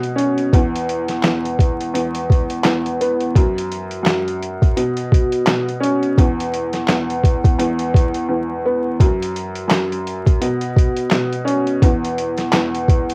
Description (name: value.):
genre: hip hop, boom-bap hip-hop.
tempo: 85 BPM.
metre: 4/4.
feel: swing 58% on 16ths.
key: unclear.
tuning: A4 = 443 Hz.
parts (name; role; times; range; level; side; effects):
warm upright piano; accompaniment; 0.0-13.1 s; E2 to C#4; -21 LUFS; equal; high-pass filter, low-pass filter, cassette tape.
boom bap sampler-style drum kit; drums; 0.0-13.1 s; handclaps, hi-hat, kick drum, snare drum; -18 LUFS; equal; cassette tape.
room: light reverb.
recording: home recording on cassette, vinyl crackle.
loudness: -18 LUFS.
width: mono.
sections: 0.0-13.1 A section.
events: break 8.3-9.0.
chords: 0.0 Bsus2; 0.5 E5; 3.4 N.C.; 4.8 Bsus2; 6.2 E5; 9.0 N.C.; 10.4 Bsus2; 11.8 E5.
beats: | 0.53 1.24 1.94 2.65 | 3.35 4.06 4.76 5.47 | 6.18 6.88 7.59 8.29 | 9.00 9.71 10.41 11.12 | 11.82 12.53.